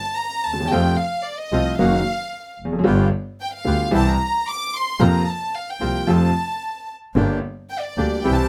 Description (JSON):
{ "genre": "tango", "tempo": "112 BPM", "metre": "4/4", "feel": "rubato", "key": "unclear", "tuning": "A4 = 440 Hz", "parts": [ { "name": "warm chamber violin section", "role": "second line", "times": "0.0-8.5 s", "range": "D5 to D6", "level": "-27 LUFS", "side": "equal", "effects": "none" }, { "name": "clear upright piano", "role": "accompaniment", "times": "0.5-8.5 s", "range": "G1 to G4", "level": "-22 LUFS", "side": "equal", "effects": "none" }, { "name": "rich double bass", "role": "bass", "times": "0.5-8.5 s", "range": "F1 to F2", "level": "-24 LUFS", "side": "equal", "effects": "none" }, { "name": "bandoneon", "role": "stabs", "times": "0.7-8.5 s", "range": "A3 to Bb4", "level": "-30 LUFS", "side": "equal", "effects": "none" } ], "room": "light reverb", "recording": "close, detailed microphones", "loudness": "-21 LUFS", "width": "mono", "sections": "0.0-8.5 A section", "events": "violin section solo 0.0-8.5", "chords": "0.0 N.C.; 0.7 F; 1.8 Ebm/Gb; 2.9 G7; 3.9 C; 5.0 Fsus4; 6.1 F; 7.2 Gm" }